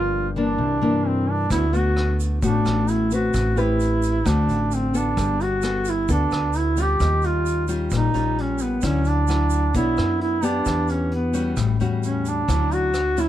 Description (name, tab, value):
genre	bossa nova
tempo	131 BPM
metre	4/4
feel	straight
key	D major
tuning	A4 = 439 Hz
part	warm duduk	melody	0.0-13.3 s	B3 to G4	-23 LUFS	right 2 dB	none
part	nylon-string guitar	accompaniment	0.0-13.3 s	G2 to C#5	-24 LUFS	left 3 dB	none
part	upright bass	bass	0.0-13.3 s	G1 to G2	-24 LUFS	equal	none
part	vintage brush drum kit	drums	1.5-13.3 s	hi-hat, kick drum, rim click	-32 LUFS	equal	none
part	egg shaker	percussion	1.5-13.3 s	none	-39 LUFS	right 10 dB	none
room	little or no reverb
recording	close, detailed microphones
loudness	-19 LUFS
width	side -12 dB against mid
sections	0.0-13.3 A section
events	none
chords	0.0 Gm7; 0.6 C9; 1.5 D6; 3.3 Am9; 4.3 D7; 5.2 Gmaj9; 7.0 Eb9; 8.8 Dmaj9; 9.7 Bm9; 10.7 Em7; 11.6 A6; 12.5 Dmaj9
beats	0.14 0.59 1.05 | 1.51 1.97 2.43 2.88 | 3.34 3.80 4.26 4.71 | 5.17 5.63 6.09 6.54 | 7.00 7.46 7.92 8.37 | 8.83 9.29 9.74 10.20 | 10.66 11.12 11.57 12.03 | 12.49 12.94